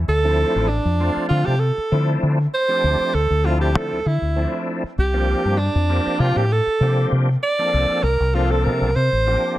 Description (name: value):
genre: electric jazz fusion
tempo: 98 BPM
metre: 4/4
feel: straight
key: unclear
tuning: A4 = 440 Hz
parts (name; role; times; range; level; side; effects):
- deep dub fingered electric bass; bass; 0.0-9.4 s; A1 to D3; -19 LUFS; left 1 dB; none
- clear alto saxophone; melody; 0.1-9.6 s; D4 to D5; -21 LUFS; right 2 dB; slapback echo
- bright tonewheel organ; accompaniment; 0.2-9.6 s; F3 to A4; -25 LUFS; left 1 dB; chorus vibrato, slow rotary speaker
room: light reverb, small room ambience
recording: none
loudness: -17 LUFS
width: side -15 dB against mid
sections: 0.1-9.6 A section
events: none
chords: 0.1 Dm9; 5.0 C9sus4